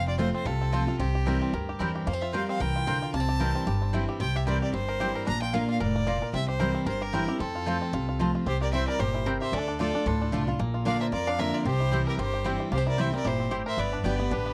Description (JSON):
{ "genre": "bluegrass", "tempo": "226 BPM", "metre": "4/4", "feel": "swing 56% on 8ths", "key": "unclear", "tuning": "A4 = 440 Hz", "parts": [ { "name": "bluegrass banjo", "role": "melody", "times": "0.0-14.5 s", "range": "Bb3 to Bb4", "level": "-38 LUFS", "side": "equal", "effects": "none" }, { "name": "clear fiddle", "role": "melody", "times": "0.0-14.5 s", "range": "G4 to Bb5", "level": "-35 LUFS", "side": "equal", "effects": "none" }, { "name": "picked steel-string acoustic guitar", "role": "accompaniment", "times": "0.0-14.5 s", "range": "F2 to G4", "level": "-32 LUFS", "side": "equal", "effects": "none" }, { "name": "upright bass", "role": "bass", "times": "0.0-14.5 s", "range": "F1 to F2", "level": "-33 LUFS", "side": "equal", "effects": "none" }, { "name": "mandolin", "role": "stabs", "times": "0.2-14.1 s", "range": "A3 to Bb5", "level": "-37 LUFS", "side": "equal", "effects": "none" }, { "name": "clear fiddle", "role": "second line", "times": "8.5-14.5 s", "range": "F4 to D5", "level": "-38 LUFS", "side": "equal", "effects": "none" } ], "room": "little or no reverb", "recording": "dry, close 1970s-style studio recording", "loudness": "-28 LUFS", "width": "mono", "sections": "0.0-8.5 A section; 8.5-14.5 B section", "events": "none", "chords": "0.0 F; 1.0 C; 2.1 Fsus2; 3.1 C; 5.3 Bb; 6.3 C; 7.4 F; 8.5 C; 9.5 Dm; 10.6 Bb; 11.7 C; 13.8 G" }